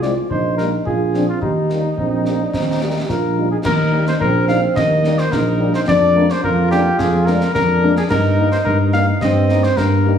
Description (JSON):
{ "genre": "military-style march for wind band", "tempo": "108 BPM", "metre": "2/4", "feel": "straight", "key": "Eb major", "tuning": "A4 = 440 Hz", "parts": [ { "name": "mellow cornet", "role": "melody", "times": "0.0-10.2 s", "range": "Eb4 to F5", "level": "-20 LUFS", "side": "left 1 dB", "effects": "none" }, { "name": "warm euphonium", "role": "second line", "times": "0.0-3.6 s", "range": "C4 to G4", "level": "-22 LUFS", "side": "right 5 dB", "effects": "none" }, { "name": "mellow French horn section", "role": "accompaniment", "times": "0.0-10.2 s", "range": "F3 to F4", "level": "-24 LUFS", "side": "left 5 dB", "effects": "none" }, { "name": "dark tuba", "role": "bass", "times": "0.0-10.2 s", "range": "Bb1 to G2", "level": "-18 LUFS", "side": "equal", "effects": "none" }, { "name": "concert snare drum, concert bass drum and clash cymbals", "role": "drums", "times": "0.0-10.0 s", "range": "none", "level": "-26 LUFS", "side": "left 2 dB", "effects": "none" }, { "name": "mellow trombone section", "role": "sustained chords", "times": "3.6-10.2 s", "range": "Bb3 to F4", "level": "-21 LUFS", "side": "right 2 dB", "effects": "none" } ], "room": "wet large studio reverb, RT60 1.2 s", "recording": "heavily compressed radio sound, studio ambience", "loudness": "-14 LUFS", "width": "side -8 dB against mid", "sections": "0.0-3.6 A section; 3.6-10.2 A section", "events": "none", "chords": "0.3 Eb/Bb; 0.9 Bb9; 1.4 Eb; 5.9 Bb7/F; 8.1 Eb/G" }